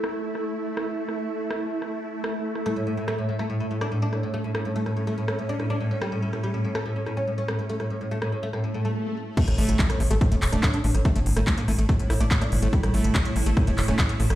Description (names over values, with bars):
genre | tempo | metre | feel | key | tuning
psychedelic trance | 143 BPM | 4/4 | straight | A major | A4 = 438 Hz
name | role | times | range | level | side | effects
swarming drone | sustained chords | 0.0-14.4 s | A3 to E4 | -34 LUFS | right 1 dB | built-in reverb, sidechain pumping
techno drum kit | drums | 0.0-14.4 s | crash cymbal, handclaps, hi-hat, rim click | -31 LUFS | equal | low-pass filter on snare, low-pass filter on cymbals, low-pass filter on hats, low-pass filter on room
ethereal airy pad | texture | 0.0-9.0 s | E4 to E5 | -35 LUFS | equal | ensemble chorus, built-in reverb, phaser, sidechain pumping
oud | melody | 2.7-14.4 s | A2 to D4 | -27 LUFS | equal | phaser, sidechain pumping, ping-pong delay
swell and impact | sound effects | 8.6-11.1 s | none | -31 LUFS | equal | none
overdriven acid bass | riff | 9.4-14.2 s | G3 to E4 | -31 LUFS | right 1 dB | distortion, auto-pan, sidechain pumping, ping-pong delay
electronic kick drum | drums | 9.4-14.1 s | none | -22 LUFS | equal | none
tight sequencer bass | bass | 9.5-14.4 s | E1 to Bb1 | -23 LUFS | equal | tube saturation
room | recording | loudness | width
light reverb, digital ambience | played on a big sound system in a bare room, stone room reverb | -23 LUFS | side -14 dB against mid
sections
0.0-9.4 A section; 9.4-14.4 B section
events
filter sweep on synth drone 0.0-9.4; swell 8.6-9.4; stop 9.0-9.4; drop 9.4-14.4; impact 9.4-11.1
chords
0.0 A5